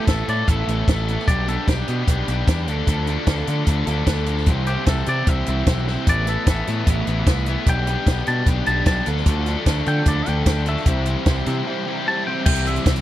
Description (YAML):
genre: indie rock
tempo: 150 BPM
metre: 4/4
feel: straight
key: unclear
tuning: A4 = 441 Hz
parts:
  - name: twangy electric guitar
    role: melody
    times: 0.0-2.1, 4.7-13.0 s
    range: G4 to A5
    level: -26 LUFS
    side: left 1 dB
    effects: none
  - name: biting overdriven guitar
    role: riff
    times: 0.0-13.0 s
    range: E3 to A4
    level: -26 LUFS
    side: left 8 dB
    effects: none
  - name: raw garage guitar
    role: riff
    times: 0.0-13.0 s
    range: A2 to C5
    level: -28 LUFS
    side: right 7 dB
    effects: overdrive, analog chorus
  - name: overdriven picked electric bass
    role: bass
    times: 0.1-13.0 s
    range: A1 to D3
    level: -22 LUFS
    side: equal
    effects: none
  - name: compact cocktail drum kit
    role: drums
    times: 0.1-13.0 s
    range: crash cymbal, hi-hat, kick drum, snare drum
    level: -19 LUFS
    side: equal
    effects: none
room: little or no reverb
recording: dry, close 1970s-style studio recording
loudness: -18 LUFS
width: side -13 dB against mid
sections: 0.0-12.5 A section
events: clean electric guitar solo 0.0-12.5; drum fill 5.9; break 11.7-12.5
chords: 0.0 Asus2; 1.3 G/B; 2.7 Dm; 4.5 C; 6.1 Asus2; 7.7 G/B; 9.1 Dm; 10.9 C